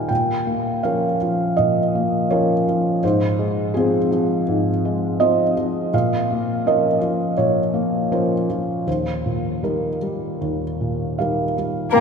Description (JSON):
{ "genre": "neoclassical piano and strings", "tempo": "74-84 BPM", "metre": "4/4", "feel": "rubato", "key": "Bb dorian", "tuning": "A4 = 441 Hz", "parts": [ { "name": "felt-muted upright piano", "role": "accompaniment", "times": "0.0-12.0 s", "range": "Eb2 to Ab5", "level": "-18 LUFS", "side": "equal", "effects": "none" }, { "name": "rich cello", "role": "second line", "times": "11.9-12.0 s", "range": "Bb3", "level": "-15 LUFS", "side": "right 4 dB", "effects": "none" }, { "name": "warm violin", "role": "melody", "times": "12.0 s", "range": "Bb4", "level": "-14 LUFS", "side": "left 15 dB", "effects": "none" } ], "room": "wet cathedral reverb, RT60 3.9 s", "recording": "recorded in a church or concert hall", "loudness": "-18 LUFS", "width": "side -6 dB against mid", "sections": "0.0-12.0 A section", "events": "none", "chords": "0.1 Bbm; 3.0 Fm/Ab; 5.9 Bbm; 8.9 Eb" }